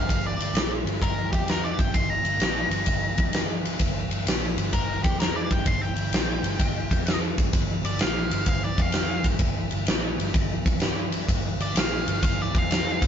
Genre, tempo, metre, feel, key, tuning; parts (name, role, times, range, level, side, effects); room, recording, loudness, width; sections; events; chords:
blues rock power trio and southern rock; 129 BPM; 4/4; swing 68% on 8ths; G minor; A4 = 441 Hz
octave-fuzz lead guitar; melody; 0.0-13.0 s; G4 to C6; -29 LUFS; equal; distortion
vintage muted picked electric bass; bass; 0.0-13.1 s; G1 to G2; -30 LUFS; equal
huge arena drum kit; drums; 0.1-13.1 s; kick drum, ride cymbal, snare drum; -24 LUFS; equal
light reverb; band playing live in one room, nothing above 7.5 kHz; -22 LUFS; side -8 dB against mid
0.0-13.1 A section
lead electric guitar solo 0.0-13.1
0.0 Gm; 1.2 Fsus24; 1.7 Gm; 5.0 Fsus24; 5.4 Gm; 6.8 Fsus2; 7.3 Gm; 8.7 Dm/F; 9.2 Gm; 12.5 Dm/F